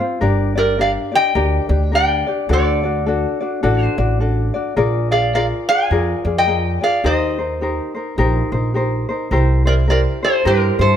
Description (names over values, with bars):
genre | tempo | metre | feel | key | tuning
Hawaiian | 106 BPM | 4/4 | swing 60% on 8ths | G minor | A4 = 439 Hz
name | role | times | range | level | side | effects
ukulele | accompaniment | 0.0-11.0 s | C4 to D5 | -20 LUFS | left 3 dB | none
upright bass | bass | 0.2-11.0 s | G1 to G2 | -18 LUFS | equal | none
metal-body resonator slide guitar | melody | 0.6-11.0 s | G4 to Ab5 | -18 LUFS | equal | none
room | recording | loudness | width
light reverb | none | -15 LUFS | side -9 dB against mid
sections
0.0-11.0 A section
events
none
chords
0.2 Gm; 2.5 D; 4.8 Bb7; 7.0 Eb6; 9.3 C7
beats
| 0.22 0.79 1.36 1.93 | 2.50 3.07 3.64 4.21 | 4.78 5.34 5.91 6.48 | 7.05 7.62 8.19 8.75 | 9.32 9.89 10.46